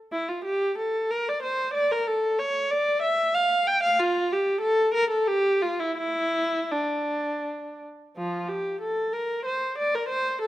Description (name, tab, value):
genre	classical, baroque-style suite movement for unaccompanied viola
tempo	81-96 BPM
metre	3/4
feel	rubato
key	D minor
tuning	A4 = 441 Hz
part	warm viola	solo	0.1-10.5 s	F3 to G5	-23 LUFS	equal	none
room	light reverb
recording	close, detailed microphones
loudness	-23 LUFS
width	side -14 dB against mid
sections	0.0-8.2 A section; 8.2-10.5 A section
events	none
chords	none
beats	| 0.10 0.77 1.41 | 2.06 2.71 3.35 | 3.98 4.61 5.26 | 5.97 6.71 7.44 | 8.15 8.81 9.46 | 10.11